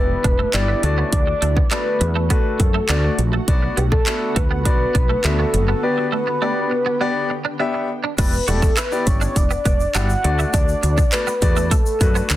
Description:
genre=dance-pop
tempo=102 BPM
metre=4/4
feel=straight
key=unclear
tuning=A4 = 440 Hz
part: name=soft octave-layered synth lead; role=melody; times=0.0-12.4 s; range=G4 to F#5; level=-23 LUFS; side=equal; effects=chorus, dub echo
part: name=clear baby grand piano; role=accompaniment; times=0.0-12.4 s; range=A3 to E5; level=-24 LUFS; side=left 3 dB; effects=sidechain pumping
part: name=shimmering ambient pad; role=sustained chords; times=0.2-8.2 s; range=D3 to G4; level=-30 LUFS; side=equal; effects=chorus, built-in reverb, sidechain pumping
part: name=woody fretless electric bass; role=bass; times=0.0-12.4 s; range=E1 to F#2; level=-20 LUFS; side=equal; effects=wide subtle chorus, sidechain pumping
part: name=twelve-string electric guitar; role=riff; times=0.2-12.2 s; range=A3 to F#4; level=-26 LUFS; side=right 6 dB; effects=ensemble chorus
part: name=house drum kit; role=drums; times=0.2-12.4 s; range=crash cymbal, handclaps, hi-hat, kick drum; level=-19 LUFS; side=equal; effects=none
part: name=tube shaker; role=percussion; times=8.2-12.4 s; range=none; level=-35 LUFS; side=left 7 dB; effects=none
room=light reverb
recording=dense, heavily limited modern master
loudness=-16 LUFS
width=side -14 dB against mid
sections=0.0-8.2 A section; 8.2-12.4 B section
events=break 5.8-8.2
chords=0.0 Em7; 0.8 D; 3.5 Bm; 5.8 G; 8.2 Em7; 10.2 D

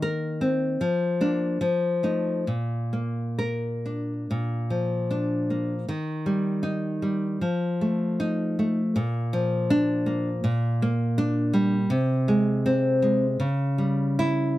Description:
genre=romantic piece for solo classical guitar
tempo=63-84 BPM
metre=2/4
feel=rubato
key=Bb major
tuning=A4 = 440 Hz
part: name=nylon-string guitar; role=solo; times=0.0-14.6 s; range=Bb2 to Bb4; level=-23 LUFS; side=equal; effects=none
room=little or no reverb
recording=dry, close 1970s-style studio recording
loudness=-23 LUFS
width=side -16 dB against mid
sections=0.0-4.3 A section; 4.3-14.6 B section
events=none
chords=0.0 Cm7/Eb; 0.8 Bb/F; 1.6 F7; 2.5 Bb; 5.9 Eb; 7.4 F7; 9.0 Bb; 10.4 Gm/Bb; 11.9 Ab/C; 13.4 C#dim

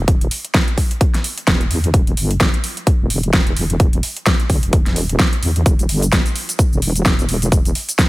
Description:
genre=bass house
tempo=129 BPM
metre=4/4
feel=swing 57% on 16ths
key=E minor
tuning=A4 = 438 Hz
part: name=wobble bass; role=bass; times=0.0-7.7 s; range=E1 to E2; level=-19 LUFS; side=equal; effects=chorus, tube saturation, sidechain pumping
part: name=big-room dance drum kit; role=drums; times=0.1-8.1 s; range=cabasa, hi-hat, snare drum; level=-20 LUFS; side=equal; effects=overdrive
part: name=electronic kick drum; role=drums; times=0.1-8.1 s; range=none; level=-15 LUFS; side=equal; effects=overdrive
room=digital ambience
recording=none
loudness=-14 LUFS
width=side -20 dB against mid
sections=0.0-8.1 A section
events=none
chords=none

